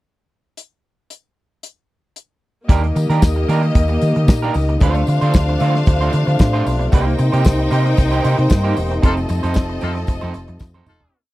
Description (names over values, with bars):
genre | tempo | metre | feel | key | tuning
disco | 114 BPM | 4/4 | straight | unclear | A4 = 441 Hz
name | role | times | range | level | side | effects
damped 70s drum kit | drums | 0.6-11.1 s | hi-hat, kick drum, snare drum, toms | -14 LUFS | equal | none
clear studio string section | second line | 2.7-11.1 s | Bb3 to G5 | -23 LUFS | left 1 dB | none
electric guitar at the edge of break-up | accompaniment | 2.7-11.0 s | A3 to C5 | -24 LUFS | right 6 dB | none
mellow French horn section | sustained chords | 2.7-11.1 s | C3 to Eb4 | -25 LUFS | left 1 dB | none
hollow-body short-scale fingered electric bass | bass | 2.7-11.1 s | E1 to Eb3 | -18 LUFS | equal | none
tambourine | percussion | 2.7-11.0 s | none | -40 LUFS | left 9 dB | none
clear horn section | stabs | 9.0-11.2 s | Eb4 to A4 | -24 LUFS | left 3 dB | none
room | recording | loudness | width
little or no reverb | dry, close 1970s-style studio recording | -14 LUFS | side -17 dB against mid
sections
0.6-2.7 pickup bar; 2.7-11.1 pre-chorus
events
fade-out 9.0-11.1; band accent 9.0-11.1; drum fill 10.6-11.1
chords
0.6 N.C.; 2.7 Ebmaj7; 4.8 Dm7; 6.9 Cm7; 9.0 F7